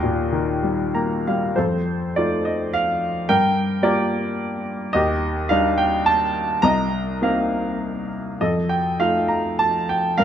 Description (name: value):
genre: classical, lyrical solo piano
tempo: 93-111 BPM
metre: 3/4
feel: rubato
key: unclear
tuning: A4 = 438 Hz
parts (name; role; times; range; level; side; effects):
- clear baby grand piano; solo; 0.0-10.2 s; C2 to Bb5; -19 LUFS; equal; none
room: wet recital hall reverb, RT60 1.5 s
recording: none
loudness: -19 LUFS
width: side -9 dB against mid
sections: 0.0-1.6 A section; 1.6-10.2 A section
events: grand piano fill 0.6-1.6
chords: 0.0 Eb; 1.6 F7; 3.3 Gm7; 4.9 Ebmaj7; 6.6 Cm7; 8.4 F7